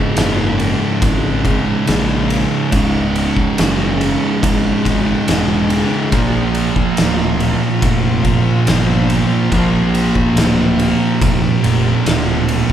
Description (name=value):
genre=stoner and doom metal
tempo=71 BPM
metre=4/4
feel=straight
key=unclear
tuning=A4 = 440 Hz
part: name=string machine, full ensemble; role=sustained chords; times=0.0-12.7 s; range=C#3 to B#4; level=-26 LUFS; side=left 1 dB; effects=none
part: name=thick fuzz guitar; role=riff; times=0.0-12.7 s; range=C#2 to A#3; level=-19 LUFS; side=left 5 dB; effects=distortion
part: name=thick fuzz guitar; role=riff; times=0.0-12.7 s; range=C#2 to A#3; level=-17 LUFS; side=right 5 dB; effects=distortion
part: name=fuzz picked electric bass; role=bass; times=0.2-12.6 s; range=C#1 to A#1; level=-21 LUFS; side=equal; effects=overdrive
part: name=oversized low-tuned drum kit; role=drums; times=0.2-12.7 s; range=kick drum, ride cymbal, snare drum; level=-19 LUFS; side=equal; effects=none
room=moderate large studio reverb, RT60 1.4 s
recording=band playing live in one room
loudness=-13 LUFS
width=side -10 dB against mid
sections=0.0-12.7 A section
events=none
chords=0.0 C#5; 6.1 A#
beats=0.17 1.02 1.87 | 2.73 3.58 4.43 5.28 | 6.13 6.98 7.83 8.68 | 9.53 10.37 11.22 12.07